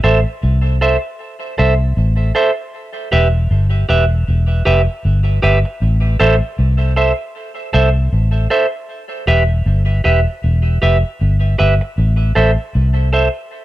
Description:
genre	roots reggae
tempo	78 BPM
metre	4/4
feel	swing 58% on 16ths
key	A minor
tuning	A4 = 439 Hz
part	clean electric guitar	accompaniment	0.0-13.3 s	G4 to E5	-17 LUFS	right 2 dB	tape echo
part	vintage muted fingered electric bass	bass	0.0-13.3 s	E1 to C2	-13 LUFS	equal	none
room	little or no reverb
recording	echo-heavy mix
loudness	-12 LUFS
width	side -15 dB against mid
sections	0.0-13.6 A section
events	none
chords	0.0 Am; 2.7 Em; 5.8 Am; 8.9 Em; 12.0 Am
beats	0.42 1.20 1.97 | 2.73 3.50 4.28 5.04 | 5.81 6.58 7.35 8.12 | 8.89 9.66 10.43 11.20 | 11.97 12.74

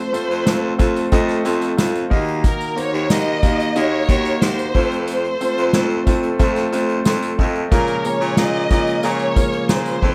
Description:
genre	piano-driven pop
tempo	91 BPM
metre	4/4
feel	straight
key	Bb harmonic minor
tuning	A4 = 440 Hz
part	warm studio violin section	melody	0.0-10.1 s	Bb4 to Eb5	-25 LUFS	equal	none
part	clear concert grand piano	accompaniment	0.0-10.1 s	Bb2 to Bb5	-24 LUFS	equal	none
part	mellow tonewheel organ	sustained chords	0.0-10.1 s	C3 to Gb4	-31 LUFS	equal	none
part	soft-mallet drum kit	drums	0.1-10.1 s	hi-hat, kick drum, snare drum	-20 LUFS	equal	none
part	tambourine	percussion	0.1-10.0 s	none	-39 LUFS	equal	none
part	clear baritone saxophone	bass	0.3-10.1 s	Eb2 to Bb2	-25 LUFS	equal	none
room	little or no reverb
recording	none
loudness	-18 LUFS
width	mono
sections	0.0-10.1 A section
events	grand piano fill 1.5-2.4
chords	0.0 F; 2.1 Ebm; 4.7 F; 7.7 Bbm7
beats	0.46 1.12 1.78 | 2.44 3.10 3.76 4.42 | 5.08 5.74 6.40 7.06 | 7.72 8.38 9.04 9.70

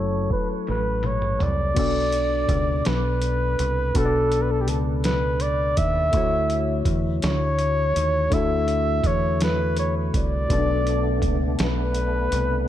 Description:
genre	slow six-eight R&B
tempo	55 BPM (dotted quarters)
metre	6/8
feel	straight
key	B minor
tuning	A4 = 438 Hz
part	breathy flugelhorn	melody	0.0-12.7 s	G4 to E5	-24 LUFS	equal	ping-pong delay
part	barky tine electric piano	accompaniment	0.0-12.7 s	B2 to A5	-27 LUFS	left 5 dB	overdrive, lush chorus
part	deep dub fingered electric bass	bass	0.0-12.6 s	F#1 to E2	-25 LUFS	right 1 dB	none
part	dusty soul sampler-style drum kit	drums	0.3-12.5 s	crash cymbal, hi-hat, kick drum, snare drum, toms	-26 LUFS	right 1 dB	overdrive
part	tonewheel organ	sustained chords	10.5-12.7 s	A3 to D4	-29 LUFS	right 2 dB	overdrive, chorus vibrato, slow rotary speaker
room	moderate plate reverb, RT60 2.7 s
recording	dreamy mix soaked in reverb, low-pass filter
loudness	-20 LUFS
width	side -12 dB against mid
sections	0.0-1.8 A section; 1.8-12.7 B section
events	filter sweep 0.0-1.8; drum fill 0.7-1.8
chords	0.0 F#m7; 1.8 Bm7; 6.1 Dmaj7; 10.5 Bm7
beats	0.68 | 1.77 2.86 | 3.95 5.04 | 6.13 7.22 | 8.32 9.41 | 10.50 11.59 | 12.68

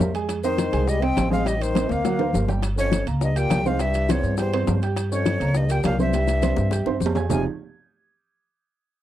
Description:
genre	Afro-Cuban jazz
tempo	206 BPM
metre	4/4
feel	straight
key	F minor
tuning	A4 = 440 Hz
part	breathy bright jazz flute	melody	0.0-7.4 s	C5 to Ab5	-28 LUFS	equal	none
part	clear trombone	second line	0.0-7.4 s	E2 to C4	-29 LUFS	left 6 dB	none
part	clear concert grand piano	accompaniment	0.0-7.4 s	F3 to Ab6	-28 LUFS	right 7 dB	none
part	upright bass	bass	0.0-7.4 s	F1 to G2	-24 LUFS	equal	none
part	maracas	percussion	0.0-7.4 s	none	-40 LUFS	left 14 dB	none
part	timbales	percussion	0.0-7.4 s	none	-32 LUFS	right 7 dB	none
part	bongos	percussion	0.1-7.4 s	none	-30 LUFS	left 8 dB	none
part	congas	percussion	0.1-7.4 s	none	-27 LUFS	left 2 dB	none
room	little or no reverb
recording	dry, close 1970s-style studio recording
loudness	-20 LUFS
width	side -12 dB against mid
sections	0.0-2.6 A section; 2.6-7.3 B section; 7.3-8.5 C section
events	drum fill 1.8-2.6, 6.1-7.3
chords	0.3 Fm9; 1.5 Am7b5; 2.0 D7alt; 2.6 Gm7b5; 3.8 C; 5.0 Gm7b5; 6.1 C; 7.3 Fm9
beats	0.00 | 0.29 0.59 0.88 1.17 | 1.46 1.75 2.05 2.34 | 2.63 2.92 3.21 3.51 | 3.80 4.09 4.38 4.67 | 4.96 5.26 5.55 5.84 | 6.13 6.42 6.72 7.01 | 7.30

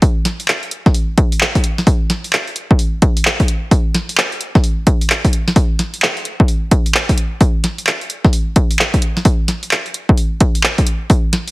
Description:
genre	UK garage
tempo	130 BPM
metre	4/4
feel	swing 64% on 16ths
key	none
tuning	none
part	electronic kick drum	drums	0.0-11.2 s	none	-13 LUFS	equal	overdrive
part	punchy analog drum machine	drums	0.0-11.5 s	handclaps, hi-hat, snare drum	-17 LUFS	equal	overdrive
room	digital ambience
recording	heavily compressed radio sound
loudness	-13 LUFS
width	side -21 dB against mid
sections	0.0-11.5 A section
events	none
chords	none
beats	| 0.02 0.48 0.94 1.41 | 1.87 2.33 2.79 3.25 | 3.71 4.18 4.64 5.10 | 5.56 6.02 6.48 6.95 | 7.41 7.87 8.33 8.79 | 9.25 9.71 10.18 10.64 | 11.10

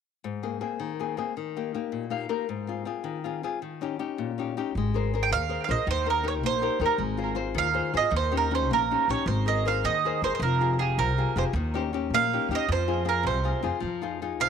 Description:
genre	italian folk, Italian serenade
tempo	106 BPM (dotted quarters)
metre	6/8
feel	rubato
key	Ab major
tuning	A4 = 440 Hz
part	nylon-string guitar	accompaniment	0.2-14.5 s	Ab2 to F5	-30 LUFS	left 10 dB	none
part	upright bass	bass	4.8-14.5 s	F1 to F2	-29 LUFS	equal	transformer saturation
part	bowl-back mandolin	melody	5.2-14.5 s	Ab4 to G5	-26 LUFS	right 9 dB	tape echo
room	light reverb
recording	1960s-style stereo with parts hard left and right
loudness	-25 LUFS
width	side -7 dB against mid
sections	0.2-4.8 A section; 4.8-14.5 B section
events	nylon-string guitar fill 1.9-2.5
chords	0.2 Abadd9; 1.4 Eb; 2.5 Ab6; 3.6 Eb7; 4.8 Abadd9; 5.9 Eb; 7.0 Ab6; 8.1 Eb7; 9.3 Abadd9; 10.4 Fmadd9; 11.5 Eb7; 12.7 Fm; 13.8 Fm7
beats	| 0.24 0.81 | 1.37 1.93 | 2.49 3.05 | 3.61 4.19 | 4.76 5.32 | 5.88 6.44 | 7.00 7.56 | 8.12 8.70 | 9.27 9.84 | 10.41 10.98 | 11.55 12.11 | 12.68 13.25 | 13.82 14.40

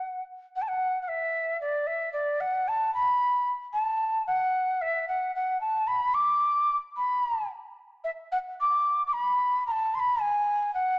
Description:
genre	andean folk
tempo	75 BPM (dotted quarters)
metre	6/8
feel	straight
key	unclear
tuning	A4 = 440 Hz
part	mellow quena	solo	0.0-11.0 s	D5 to D6	-24 LUFS	equal	none
room	moderate scoring stage reverb, RT60 1.7 s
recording	small speaker sound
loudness	-24 LUFS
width	side -24 dB against mid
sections	0.5-11.0 A section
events	none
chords	none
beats	| 0.54 1.35 | 2.15 2.96 | 3.76 4.57 | 5.37 6.17 | 6.98 7.79 | 8.59 9.39 | 10.20

